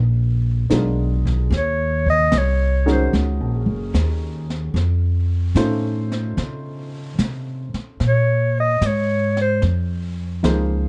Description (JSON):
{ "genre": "jazz ballad", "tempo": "74 BPM", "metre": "4/4", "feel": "swing 68% on 8ths", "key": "Bb minor", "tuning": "A4 = 440 Hz", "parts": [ { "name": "upright bass", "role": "bass", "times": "0.0-10.9 s", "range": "Gb1 to Db3", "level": "-22 LUFS", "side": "equal", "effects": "none" }, { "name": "warm baby grand piano", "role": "accompaniment", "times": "0.7-10.9 s", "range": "Eb3 to C5", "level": "-27 LUFS", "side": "equal", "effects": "none" }, { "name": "jazz brush drum kit", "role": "drums", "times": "0.7-10.9 s", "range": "brushed snare drum, hi-hat, kick drum, snare drum", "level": "-30 LUFS", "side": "equal", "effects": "none" }, { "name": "mellow clarinet", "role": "melody", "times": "1.6-3.1, 8.1-9.6 s", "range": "C5 to Eb5", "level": "-22 LUFS", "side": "equal", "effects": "plate reverb" } ], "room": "light reverb", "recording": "dark, warm production, nothing above 10.6 kHz", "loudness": "-20 LUFS", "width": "mono", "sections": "0.0-10.9 A section", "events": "clarinet solo 0.0-10.9", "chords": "0.0 Bb7b9; 1.5 Ebm7; 4.8 F7b13; 8.0 Bbm9" }